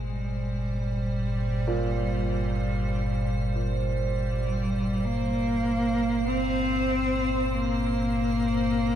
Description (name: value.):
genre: dark ambient drone.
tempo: free time.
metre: none.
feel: none.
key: G minor.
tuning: A4 = 441 Hz.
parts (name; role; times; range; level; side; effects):
deep rumbling drone; drone; 0.0-9.0 s; G1 to Bb2; -28 LUFS; equal; built-in reverb, phaser, wide subtle chorus.
icy glass pad; texture; 0.0-9.0 s; C5; -36 LUFS; right 5 dB; chorus, built-in reverb, shimmer reverb.
warm cello; melody; 0.1-9.0 s; G3 to C4; -28 LUFS; equal; shimmer reverb, ping-pong delay.
warm concert grand piano; arpeggios; 1.7-9.0 s; Bb2; -36 LUFS; right 3 dB; shimmer reverb, ping-pong delay.
room: wet cathedral reverb, RT60 6.4 s.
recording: none.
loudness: -24 LUFS.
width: side -10 dB against mid.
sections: 0.0-9.0 A section.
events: fade-in on ambient pad 0.0-9.0.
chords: 0.0 Gm.